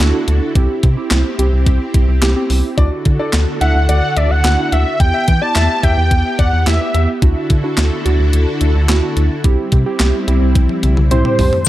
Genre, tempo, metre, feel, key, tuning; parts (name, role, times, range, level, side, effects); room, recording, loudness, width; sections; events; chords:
synth-pop; 108 BPM; 4/4; straight; A4 = 440 Hz
warm analog keys; accompaniment; 0.0-11.7 s; B3 to A5; -22 LUFS; right 3 dB; chorus, tremolo
string machine, violas; sustained chords; 0.0-11.7 s; D3 to A4; -23 LUFS; left 1 dB; ensemble chorus
rubbery square bass; bass; 0.0-11.7 s; C2 to E3; -14 LUFS; equal
clean 12-bit digital drum machine; drums; 0.0-11.7 s; crash cymbal, handclaps, hi-hat, kick drum, snare drum, toms; -16 LUFS; equal; overdrive, gated reverb
warm concert grand piano; second line; 2.8-7.0 s; D5 to F#5; -25 LUFS; left 6 dB; tape echo
wide unison lead; melody; 3.6-7.1, 11.1-11.7 s; C5 to A5; -18 LUFS; equal
little or no reverb; -12 LUFS; side -14 dB against mid
0.0-11.7 A section
drum fill 10.6-11.7; synth keys fill 10.8-11.7
0.0 Dadd9; 0.6 C; 2.8 Dadd9; 5.0 Em; 7.2 Dadd9; 9.4 C